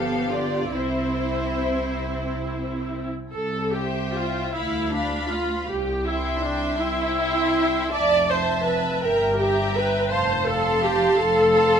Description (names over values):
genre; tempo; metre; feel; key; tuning
classical, slow romantic movement for string orchestra; 44-58 BPM (dotted quarters); 6/8; rubato; C major; A4 = 440 Hz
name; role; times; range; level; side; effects
warm studio violin section; melody; 0.0-11.8 s; C5 to C6; -32 LUFS; left 3 dB; none
rich studio violin section; second line; 0.0-11.8 s; E4 to A5; -28 LUFS; equal; none
rich studio viola section; accompaniment; 0.0-11.8 s; B3 to D5; -22 LUFS; equal; none
rich studio cello section; bass; 0.0-11.8 s; C2 to F3; -32 LUFS; right 2 dB; none
rich studio double bass section; bass; 0.0-11.8 s; F1 to D2; -32 LUFS; right 1 dB; none
room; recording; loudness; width
moderate large studio reverb, RT60 1.1 s; minimal, uncompressed stereo recording; -21 LUFS; side -8 dB against mid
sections
0.0-3.3 A section; 3.3-11.8 B section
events
none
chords
0.0 G7; 0.7 C; 4.5 Bdim/D; 5.7 C; 7.9 Fmaj7; 9.0 Edim/G; 10.1 F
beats
| 0.73 2.03 | 3.33 4.54 | 5.67 6.79 | 7.92 9.02 | 10.11 11.18